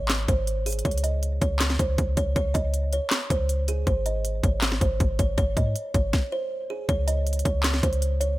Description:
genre	hip hop, trap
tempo	159 BPM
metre	4/4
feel	half-time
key	unclear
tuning	A4 = 443 Hz
part	kalimba	melody	0.0-8.4 s	G#4 to D#5	-29 LUFS	right 2 dB	none
part	clean 808-style bass	bass	0.0-8.4 s	G#1 to G#2	-25 LUFS	equal	none
part	trap drum kit	drums	0.1-8.3 s	handclaps, hi-hat, kick drum, snare drum	-25 LUFS	equal	none
room	little or no reverb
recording	none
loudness	-22 LUFS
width	side -17 dB against mid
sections	0.0-6.9 A section; 6.9-8.4 B section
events	stop 6.1-6.9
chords	0.0 G#; 0.9 G#add11/C# (rootless); 3.9 G#; 6.9 G#add11/C# (rootless)

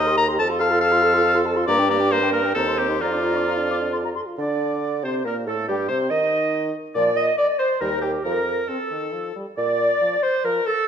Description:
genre	quick classical-period movement for wind quintet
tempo	138 BPM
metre	3/4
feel	rubato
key	Bb major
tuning	A4 = 440 Hz
part	silver concert flute	melody	0.0-10.7 s	G4 to D6	-26 LUFS	left 7 dB	none
part	clear oboe	second line	0.0-10.9 s	F4 to Bb5	-24 LUFS	left 3 dB	none
part	clear French horn	accompaniment	0.0-10.6 s	Eb3 to Bb4	-29 LUFS	equal	none
part	clear clarinet	accompaniment	0.0-10.9 s	G4 to Eb5	-25 LUFS	right 7 dB	none
part	warm bassoon	bass	0.0-9.9 s	Eb2 to Eb3	-25 LUFS	right 2 dB	none
room	wet recital hall reverb, RT60 1.5 s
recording	dark, warm production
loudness	-19 LUFS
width	side -8 dB against mid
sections	0.0-4.4 A section; 4.4-10.9 B section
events	none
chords	0.4 F; 1.7 Gm; 2.6 Cm7/Eb; 3.0 Bb/F; 3.9 F; 4.4 Bb/D; 5.7 Eb/G; 7.0 Bb5; 7.8 Eb; 8.2 F; 9.6 Bb

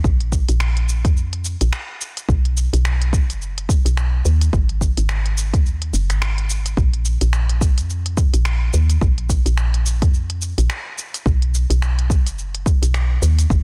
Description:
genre	organic downtempo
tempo	107 BPM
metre	4/4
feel	swing 58% on 16ths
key	unclear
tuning	A4 = 439 Hz
part	woody FM bass	bass	0.0-13.6 s	F#1 to F2	-20 LUFS	equal	tube saturation
part	electronic kick drum	drums	0.0-13.6 s	none	-20 LUFS	equal	none
part	organic electronic drum kit	drums	0.0-13.6 s	cabasa, finger snaps, hi-hat	-30 LUFS	equal	soft clipping on snare
room	digital ambience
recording	dense, heavily limited modern master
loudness	-19 LUFS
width	mono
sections	0.0-13.6 A section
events	none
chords	none

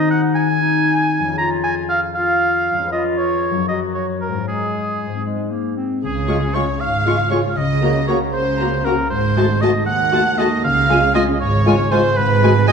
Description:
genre	cinematic, playful, whimsical film cue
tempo	78 BPM (dotted quarters)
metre	6/8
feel	straight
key	Db major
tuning	A4 = 440 Hz
part	clear oboe	second line	0.0-12.7 s	Ab4 to Bb5	-20 LUFS	right 2 dB	none
part	warm clarinet	second line	0.0-6.0 s	Ab3 to Gb4	-22 LUFS	equal	none
part	concert harp	arpeggios	0.0-12.7 s	F2 to Gb5	-24 LUFS	left 7 dB	none
part	silver concert flute	second line	0.1-5.2 s	Ab4 to Bb5	-26 LUFS	left 2 dB	none
part	warm studio violin section	second line	6.0-12.7 s	Ab4 to Gb5	-24 LUFS	left 1 dB	none
part	dark studio cello section	bass	6.0-12.7 s	Eb2 to Db3	-22 LUFS	right 4 dB	none
part	dark studio double bass section	bass	6.0-12.7 s	Ab1 to Eb2	-22 LUFS	right 5 dB	none
part	rich studio violin section	melody	6.3-12.7 s	Ab5 to Db6	-28 LUFS	left 2 dB	none
part	warm studio viola section	accompaniment	6.3-12.7 s	Ab3 to Gb4	-24 LUFS	right 2 dB	none
part	mellow French horn section	sustained chords	6.3-12.7 s	Ab3 to Gb4	-23 LUFS	left 4 dB	none
room	moderate scoring stage reverb, RT60 1.6 s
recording	nothing above 10.4 kHz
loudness	-15 LUFS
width	side -6 dB against mid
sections	0.0-6.0 A section; 6.0-12.7 B section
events	none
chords	0.0 Ab7/Eb; 1.4 Db/F; 2.9 Db7/F; 3.7 Gbmaj7; 4.5 Db/Ab; 5.2 Ab; 6.0 Db; 7.6 Ebm/Db; 9.1 Ab7b9; 10.6 Db; 12.2 G#m7

